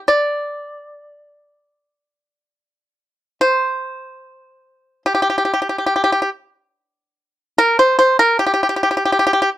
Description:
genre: chinese traditional.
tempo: 68-77 BPM.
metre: 2/4.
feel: rubato.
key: unclear.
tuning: A4 = 439 Hz.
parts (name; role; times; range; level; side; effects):
pipa; solo; 0.1-9.5 s; G4 to D5; -14 LUFS; equal; none.
room: little or no reverb.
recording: dry, close 1970s-style studio recording.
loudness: -14 LUFS.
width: side -13 dB against mid.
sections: 0.0-6.8 A section; 6.8-9.6 B section.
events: none.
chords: none.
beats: | 0.07 0.92 | 1.77 2.60 | 3.42 4.23 | 5.07 5.94 | 6.78 7.59 | 8.39 9.18.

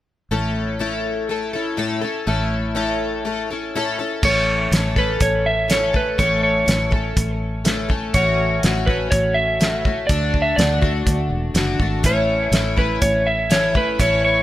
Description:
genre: folk rock and heartland rock.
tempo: 123 BPM.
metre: 4/4.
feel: straight.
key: A major.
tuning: A4 = 441 Hz.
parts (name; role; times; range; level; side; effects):
picked plugged-in twelve-string acoustic guitar; accompaniment; 0.3-14.4 s; A2 to A4; -23 LUFS; left 3 dB; analog chorus.
fingered electric bass; bass; 0.3-14.4 s; E1 to D2; -24 LUFS; equal; none.
electric slide guitar; melody; 4.2-14.4 s; B4 to E5; -20 LUFS; right 1 dB; tape echo.
cloth-damped thuddy drum kit; drums; 4.2-14.1 s; crash cymbal, hi-hat, kick drum, snare drum; -20 LUFS; equal; none.
room: light reverb.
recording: none.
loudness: -17 LUFS.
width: side -14 dB against mid.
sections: 0.3-4.2 A section; 4.2-14.4 B section.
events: none.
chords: 0.3 A; 8.1 F#m7/A; 10.1 D; 12.0 A.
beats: | 0.31 0.80 1.29 1.78 | 2.27 2.76 3.25 3.74 | 4.23 4.72 5.21 5.70 | 6.19 6.68 7.17 7.65 | 8.14 8.63 9.12 9.61 | 10.09 10.58 11.07 11.56 | 12.04 12.53 13.02 13.50 | 13.99.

